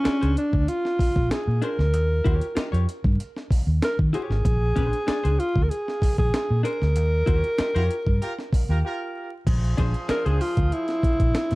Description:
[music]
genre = funk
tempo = 96 BPM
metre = 4/4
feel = straight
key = Bb mixolydian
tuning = A4 = 440 Hz
[part]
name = breathy alto saxophone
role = melody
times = 0.0-11.6 s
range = Db4 to Bb4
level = -26 LUFS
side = equal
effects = tape echo
[part]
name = vintage hollow-body jazz guitar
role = accompaniment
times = 0.0-10.4 s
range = D4 to Eb5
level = -32 LUFS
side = left 4 dB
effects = none
[part]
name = vintage muted fingered electric bass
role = bass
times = 0.1-11.6 s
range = Ab1 to Eb3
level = -23 LUFS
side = equal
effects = none
[part]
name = breakbeat sampler-style drum kit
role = drums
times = 0.1-11.6 s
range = crash cymbal, hi-hat, kick drum, snare drum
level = -24 LUFS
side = equal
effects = none
[part]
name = warm horn section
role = second line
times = 7.8-11.6 s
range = F3 to C5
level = -34 LUFS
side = right 2 dB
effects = none
[sound]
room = little or no reverb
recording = dark, warm production, vinyl crackle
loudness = -21 LUFS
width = side -21 dB against mid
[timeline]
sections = 0.0-9.5 A section; 9.5-11.6 B section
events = band accent 7.0-9.5; break 8.8-9.5; alto saxophone solo 9.5-11.6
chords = 0.0 Bb9; 1.9 Eb9; 4.5 Bb9; 7.0 Eb9; 9.5 Bb9

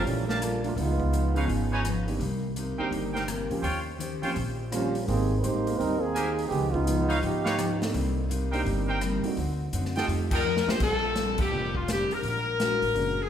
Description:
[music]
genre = jazz, big band swing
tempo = 167 BPM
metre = 4/4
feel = swing 63% on 8ths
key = unclear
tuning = A4 = 440 Hz
[part]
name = warm trombone section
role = second line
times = 0.0-1.5, 4.7-7.8 s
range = Eb3 to C5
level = -28 LUFS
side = right 3 dB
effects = none
[part]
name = dark grand piano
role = accompaniment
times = 0.0-13.2 s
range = D#3 to Bb4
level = -34 LUFS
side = right 2 dB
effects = none
[part]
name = upright bass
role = bass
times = 0.0-13.3 s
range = F1 to Bb2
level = -30 LUFS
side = equal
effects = none
[part]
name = picked steel-string acoustic guitar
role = accompaniment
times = 0.1-13.2 s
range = Bb2 to C5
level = -34 LUFS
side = left 2 dB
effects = none
[part]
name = swinging big-band drum kit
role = drums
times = 0.1-13.1 s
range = crash cymbal, hi-hat, kick drum, rim click, snare drum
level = -35 LUFS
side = left 1 dB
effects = none
[part]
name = clear trumpet section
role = stabs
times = 0.3-10.4 s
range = Eb4 to A5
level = -33 LUFS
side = right 1 dB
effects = none
[part]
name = bright saxophone section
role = melody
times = 10.3-13.3 s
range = F4 to C5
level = -26 LUFS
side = left 4 dB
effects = none
[sound]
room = moderate scoring stage reverb, RT60 1.6 s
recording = recorded in a church or concert hall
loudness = -25 LUFS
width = side -9 dB against mid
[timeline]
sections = 0.0-10.8 A section; 10.8-13.3 B section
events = trombone section solo 0.0-10.8; band accent 10.3, 11.3; drum fill 10.5-10.8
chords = 0.0 Gm9; 0.8 C#9; 2.2 Cm7; 3.6 Eb13; 5.1 Abmaj9; 6.5 C#9; 7.9 Cm7; 9.4 D7b9; 10.1 F9; 10.8 Bb69; 12.2 Bb7alt

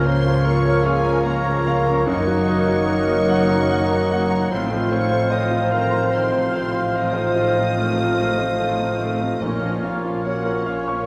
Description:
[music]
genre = classical, romantic movement for piano and orchestra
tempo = 49 BPM (dotted quarters)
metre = 12/8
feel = rubato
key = Bb minor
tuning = A4 = 441 Hz
[part]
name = bright concert grand piano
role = melody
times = 0.0-11.1 s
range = Db2 to Db6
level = -26 LUFS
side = equal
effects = none
[part]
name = rich symphonic violin section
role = melody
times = 0.0-11.1 s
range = Db5 to Eb6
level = -36 LUFS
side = equal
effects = none
[part]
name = large flute ensemble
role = second line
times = 0.0-11.1 s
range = F6 to Gb6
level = -35 LUFS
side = equal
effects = none
[part]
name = warm clarinet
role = second line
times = 0.0-11.1 s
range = Db4 to Eb5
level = -31 LUFS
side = equal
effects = none
[part]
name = warm oboe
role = second line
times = 0.0-11.1 s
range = C5 to Eb5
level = -34 LUFS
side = equal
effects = none
[part]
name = warm symphonic violin section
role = second line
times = 0.0-11.1 s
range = A3 to Bb4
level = -34 LUFS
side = equal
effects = none
[part]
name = rich symphonic viola section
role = accompaniment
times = 0.0-11.1 s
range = Eb3 to Db4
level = -32 LUFS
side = equal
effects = none
[part]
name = warm bassoon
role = accompaniment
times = 0.0-11.1 s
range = Bb3 to C4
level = -29 LUFS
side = equal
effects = none
[part]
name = dark French horn section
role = sustained chords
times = 0.0-11.1 s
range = Bb3 to F4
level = -31 LUFS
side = equal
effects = none
[part]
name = warm trombone section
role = sustained chords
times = 0.0-11.1 s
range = Bb2 to Bb3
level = -32 LUFS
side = equal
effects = none
[part]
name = warm trumpet section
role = stabs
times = 0.0-11.1 s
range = Bb4 to F5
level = -31 LUFS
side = equal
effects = none
[part]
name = rich symphonic double bass section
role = bass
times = 0.0-11.1 s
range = Gb1 to Db2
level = -30 LUFS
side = equal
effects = none
[part]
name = warm symphonic cello section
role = bass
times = 0.0-11.1 s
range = Gb2 to Db3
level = -31 LUFS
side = equal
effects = none
[part]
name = timpani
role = percussion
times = 9.4-10.6 s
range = Bb2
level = -33 LUFS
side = equal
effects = none
[sound]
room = wet recital hall reverb, RT60 1.5 s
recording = recorded in a church or concert hall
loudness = -20 LUFS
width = mono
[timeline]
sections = 0.0-11.1 A section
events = none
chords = 0.0 Bbm/Db; 2.1 Ebm/Gb; 4.5 F7/A; 9.4 Bbm

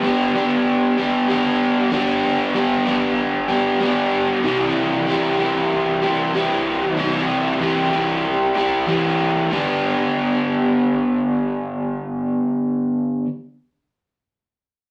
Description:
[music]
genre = rock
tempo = 95 BPM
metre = 4/4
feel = straight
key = G major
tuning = A4 = 440 Hz
[part]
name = crunchy overdriven guitar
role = solo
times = 0.0-13.3 s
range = G2 to G4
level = -20 LUFS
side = equal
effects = none
[sound]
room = wet studio reverb, RT60 0.6 s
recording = rough rehearsal-room recording, tube saturation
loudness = -20 LUFS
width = mono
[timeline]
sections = 0.0-9.5 A section; 9.5-12.0 B section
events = none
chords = 0.0 G; 4.4 C; 9.5 G

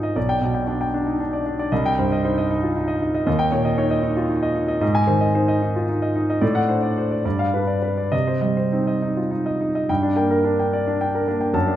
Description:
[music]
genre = classical, romantic character piece for solo piano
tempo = 66-80 BPM (dotted quarters)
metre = 6/8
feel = rubato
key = C minor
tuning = A4 = 440 Hz
[part]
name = warm concert grand piano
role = solo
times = 0.0-11.8 s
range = B1 to A5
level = -19 LUFS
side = equal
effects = none
[sound]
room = wet recital hall reverb, RT60 1.5 s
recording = minimal, uncompressed stereo recording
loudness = -19 LUFS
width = side -12 dB against mid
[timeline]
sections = 0.0-9.9 A section; 9.9-11.8 B section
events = none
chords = 0.2 G/B; 1.7 Cm; 3.3 Eb7; 4.8 Ab; 6.4 D7/A; 7.2 G7; 8.1 Cm; 9.9 Gm

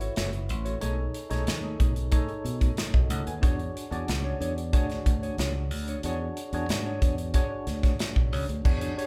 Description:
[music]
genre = polished 1980s jazz-funk pop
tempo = 92 BPM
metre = 4/4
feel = straight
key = unclear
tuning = A4 = 442 Hz
[part]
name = tine electric piano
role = accompaniment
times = 0.0-9.1 s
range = D4 to G#5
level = -38 LUFS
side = equal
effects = none
[part]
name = mellow electric guitar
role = riff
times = 0.0-9.1 s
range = A3 to C#5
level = -39 LUFS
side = equal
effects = none
[part]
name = modern bright fingered electric bass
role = bass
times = 0.0-8.9 s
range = F#1 to B2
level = -34 LUFS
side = equal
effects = none
[part]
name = modern studio drum kit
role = drums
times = 0.0-9.1 s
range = crash cymbal, hi-hat, kick drum, snare drum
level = -29 LUFS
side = equal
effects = none
[sound]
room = light reverb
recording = band playing live in one room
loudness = -28 LUFS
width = mono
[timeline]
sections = 0.0-8.6 A section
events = none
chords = 0.0 A6; 0.8 B13; 3.4 E13

